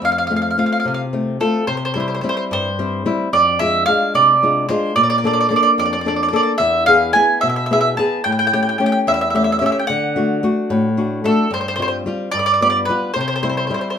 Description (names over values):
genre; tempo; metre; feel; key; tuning
italian folk, Italian serenade; 73 BPM (dotted quarters); 6/8; straight; C major; A4 = 440 Hz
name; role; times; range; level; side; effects
mandolin; melody; 0.0-14.0 s; A4 to A5; -16 LUFS; right 2 dB; none
nylon-string guitar; accompaniment; 0.0-14.0 s; E2 to A4; -19 LUFS; left 2 dB; none
room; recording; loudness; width
moderate studio reverb, RT60 0.6 s; minimal, uncompressed stereo recording; -15 LUFS; side -8 dB against mid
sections
0.0-1.7 A section; 1.7-14.0 B section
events
none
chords
0.0 F; 1.7 C; 3.3 Fm6; 5.0 Bbmaj7; 6.6 E; 8.2 A7; 9.9 D; 11.5 G7sus4; 12.3 G7; 13.2 C